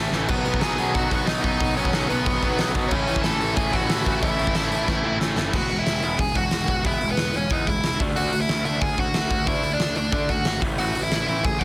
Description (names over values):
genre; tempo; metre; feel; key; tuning
punk rock; 183 BPM; 4/4; straight; E major; A4 = 441 Hz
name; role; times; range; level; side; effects
overdriven electric guitar; riff; 0.0-11.6 s; A2 to E4; -31 LUFS; equal; none
tight distorted guitar; riff; 0.0-5.5 s; A2 to B3; -30 LUFS; equal; distortion
fuzz picked electric bass; bass; 0.0-11.6 s; E1 to D3; -31 LUFS; equal; overdrive
big rock drum kit; drums; 0.1-11.6 s; crash cymbal, hi-hat, kick drum, snare drum; -28 LUFS; equal; none
dark smooth lead guitar; melody; 0.3-11.6 s; B3 to A5; -28 LUFS; equal; overdrive
room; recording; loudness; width
light reverb; dense, heavily limited modern master; -23 LUFS; mono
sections
0.0-5.5 A section; 5.5-11.6 B section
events
drum fill 0.1, 4.9-5.5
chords
0.3 B; 2.9 A; 5.5 E; 8.0 D; 10.6 A5